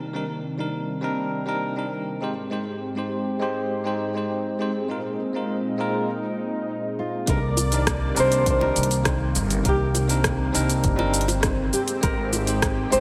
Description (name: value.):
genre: sunset chillout.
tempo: 101 BPM.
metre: 4/4.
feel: straight.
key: C minor.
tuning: A4 = 441 Hz.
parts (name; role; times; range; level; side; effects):
lush unison pad; sustained chords; 0.0-13.0 s; Ab2 to D5; -32 LUFS; equal; chorus.
smooth R&B drum kit; drums; 0.0-13.0 s; hi-hat, rim click, shaker; -29 LUFS; equal; overdrive, low-pass filter on snare, low-pass filter on hats, low-pass filter on perc, low-pass filter on room.
bell-like tine electric piano; accompaniment; 0.1-13.0 s; G3 to C5; -30 LUFS; equal; digital delay.
nylon-string guitar; melody; 7.0-13.0 s; F4 to C5; -28 LUFS; equal; tape echo, slapback echo.
upright bass; bass; 7.3-13.0 s; G1 to C2; -27 LUFS; equal; none.
electronic kick drum; drums; 7.3-12.7 s; none; -29 LUFS; equal; overdrive.
bongos; percussion; 7.6-12.4 s; none; -36 LUFS; equal; none.
room: wet lush hall reverb, RT60 2.6 s.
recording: big arena sound.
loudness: -24 LUFS.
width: mono.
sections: 0.0-7.3 A section; 7.3-13.0 B section.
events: filter sweep on analog synth pad 0.0-7.3.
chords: 0.0 Cm9; 2.2 Abmaj7; 4.9 Bb9sus4; 7.3 Cm9; 11.7 Abmaj7.